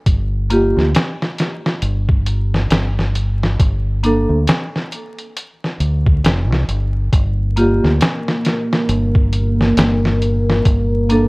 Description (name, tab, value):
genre	trip hop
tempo	68 BPM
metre	4/4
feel	swing 60% on 16ths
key	G minor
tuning	A4 = 440 Hz
part	deep dub fingered electric bass	bass	0.1-11.3 s	F1 to D2	-17 LUFS	equal	none
part	trip hop sampler-style drum kit	drums	0.1-11.3 s	hi-hat, kick drum, snare drum	-17 LUFS	equal	studio reverb
part	vibraphone with medium mallets	accompaniment	0.5-11.3 s	Bb3 to A4	-17 LUFS	equal	tremolo
part	dark analog pad	sustained chords	8.0-11.3 s	Bb3 to Bb4	-20 LUFS	equal	chorus
room	little or no reverb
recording	worn, warbling old tape, cassette tape, vinyl crackle, warbly pitch drift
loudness	-14 LUFS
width	side -27 dB against mid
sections	0.0-11.3 A section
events	none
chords	0.1 N.C.; 7.1 Gm; 10.7 Bbmaj7/G